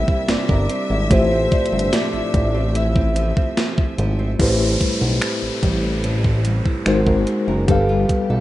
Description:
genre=contemporary R&B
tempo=73 BPM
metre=4/4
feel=straight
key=A minor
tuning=A4 = 440 Hz
part: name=soft octave-layered synth lead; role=melody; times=0.0-4.0 s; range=C5 to E5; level=-24 LUFS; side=left 1 dB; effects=chorus
part: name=mellow tine electric piano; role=accompaniment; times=0.0-8.4 s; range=G3 to F5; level=-22 LUFS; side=left 2 dB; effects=medium stereo tremolo
part: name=warm studio string section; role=sustained chords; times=0.0-8.4 s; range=C3 to E5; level=-31 LUFS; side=left 1 dB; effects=none
part: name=nylon-string guitar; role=arpeggios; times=0.0-8.4 s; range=A2 to Bb4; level=-28 LUFS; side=right 4 dB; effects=none
part: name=fat analog bass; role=bass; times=0.0-8.4 s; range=F#1 to B1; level=-20 LUFS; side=equal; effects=none
part: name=large celesta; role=texture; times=0.0-2.6 s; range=C5 to G5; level=-33 LUFS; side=right 2 dB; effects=none
part: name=gated 80s digital drum machine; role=drums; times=0.1-8.3 s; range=crash cymbal, finger snaps, hi-hat, kick drum, snare drum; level=-20 LUFS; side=equal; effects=gated reverb, gated reverb snare, overdrive, vintage 12-bit sampler grit
part: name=downlifter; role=sound effects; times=4.4-8.4 s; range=none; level=-28 LUFS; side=equal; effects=none
room=little or no reverb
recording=rough home demo mix, nothing above 11.0 kHz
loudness=-16 LUFS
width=side -15 dB against mid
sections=0.0-4.4 A section; 4.4-8.4 B section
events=none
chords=0.0 C7/G; 1.1 Fmaj7; 4.4 Am7; 6.9 G#9; 7.7 G9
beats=0.28 | 1.11 1.93 2.75 3.57 | 4.39 5.22 6.04 6.86 | 7.68

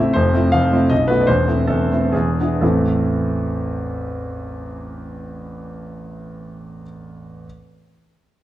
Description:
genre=classical, romantic triple-time dance for piano with dotted rhythms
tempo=114-172 BPM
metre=3/4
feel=rubato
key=A minor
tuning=A4 = 441 Hz
part: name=bright concert grand piano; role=solo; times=0.0-7.5 s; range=B0 to F5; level=-18 LUFS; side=equal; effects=none
room=moderate recital hall reverb, RT60 1.3 s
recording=dark, warm production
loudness=-16 LUFS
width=side -14 dB against mid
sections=0.0-2.6 A section; 2.6-5.4 B section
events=slowing down 0.0-2.6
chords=0.1 Fmaj7; 0.9 B7; 1.3 Am/E; 2.1 E7; 2.6 Am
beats=| 0.15 0.52 0.91 | 1.28 1.68 2.13 | 2.63 3.10 3.57 | 4.01 4.47 4.93

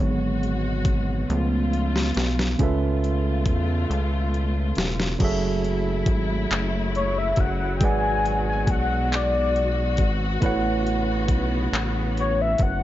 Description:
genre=slow six-eight R&B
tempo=46 BPM (dotted quarters)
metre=6/8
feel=straight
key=F# minor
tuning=A4 = 440 Hz
part: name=tine electric piano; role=accompaniment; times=0.0-12.8 s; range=C#3 to F#5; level=-27 LUFS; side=right 4 dB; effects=none
part: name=warm studio string section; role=sustained chords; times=0.0-12.8 s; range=B2 to F#4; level=-30 LUFS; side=left 3 dB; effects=none
part: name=rubbery square bass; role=bass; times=0.0-12.8 s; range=E1 to E2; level=-25 LUFS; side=equal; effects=none
part: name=smooth R&B drum kit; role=drums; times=0.4-12.8 s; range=crash cymbal, handclaps, hi-hat, kick drum, snare drum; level=-24 LUFS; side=equal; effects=none
part: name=warm velvety synth lead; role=melody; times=7.0-12.8 s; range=C#5 to G#5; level=-24 LUFS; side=left 3 dB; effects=chorus
room=little or no reverb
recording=nothing above 7.5 kHz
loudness=-21 LUFS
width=side -14 dB against mid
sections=0.0-2.6 A section; 2.6-5.2 B section; 5.2-12.8 C section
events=tine electric piano solo 0.0-2.6; drum fill 1.3-2.6, 3.9-5.2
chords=0.0 G#m7b5; 1.3 C#aug7; 2.6 C#7alt; 5.2 F#m9; 7.8 G#m7b5; 10.4 A69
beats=1.29 | 2.59 3.90 | 5.20 6.51 | 7.81 9.12 | 10.42 11.72

